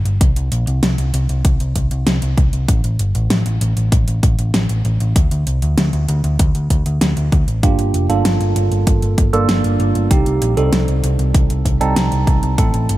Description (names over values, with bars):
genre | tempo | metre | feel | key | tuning
synthwave | 97 BPM | 4/4 | straight | unclear | A4 = 440 Hz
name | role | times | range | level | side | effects
hollow-body short-scale picked electric bass | bass | 0.1-13.0 s | F1 to D2 | -17 LUFS | equal | none
pop drum kit | drums | 0.1-13.0 s | hi-hat, snare drum | -22 LUFS | equal | overdrive
electronic kick drum | drums | 0.2-12.7 s | none | -15 LUFS | equal | overdrive
tine electric piano | stabs | 7.6-13.0 s | G3 to A4 | -19 LUFS | right 4 dB | phaser, diffuse ambient delay
room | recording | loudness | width
light reverb, digital ambience | none | -14 LUFS | side -16 dB against mid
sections
0.0-13.0 A section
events
none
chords
0.2 N.C.; 5.2 D5; 7.6 Gm7; 10.1 Cm